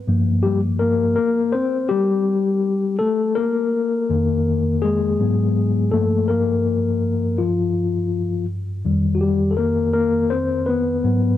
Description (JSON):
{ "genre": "hip hop", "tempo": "82 BPM", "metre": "4/4", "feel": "swing 60% on 16ths", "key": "G minor", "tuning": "A4 = 439 Hz", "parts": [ { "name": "mellow tine electric piano", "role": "solo", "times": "0.1-11.4 s", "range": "F2 to C5", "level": "-17 LUFS", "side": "left 2 dB", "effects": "medium stereo tremolo, cassette tape" } ], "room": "light reverb", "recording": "home recording on cassette", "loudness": "-17 LUFS", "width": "side -12 dB against mid", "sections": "0.0-11.4 A section", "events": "tine electric piano solo 0.0-11.4", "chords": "0.1 Gm7; 3.0 F7sus4; 5.2 Abm7; 5.9 Gm9; 8.9 F9sus4" }